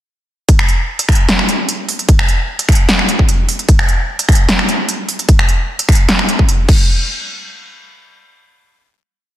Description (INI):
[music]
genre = dubstep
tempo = 150 BPM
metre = 4/4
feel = half-time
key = none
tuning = none
[part]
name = big-room dance drum kit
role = drums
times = 0.5-6.8 s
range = crash cymbal, finger snaps, hi-hat, snare drum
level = -15 LUFS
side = equal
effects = overdrive
[part]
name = electronic kick drum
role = drums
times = 0.5-6.8 s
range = none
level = -11 LUFS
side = equal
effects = none
[sound]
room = light reverb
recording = dense, heavily limited modern master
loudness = -11 LUFS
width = side -13 dB against mid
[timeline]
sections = 0.5-6.9 drop; 6.9-9.4 final hit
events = drop 0.5-6.9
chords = none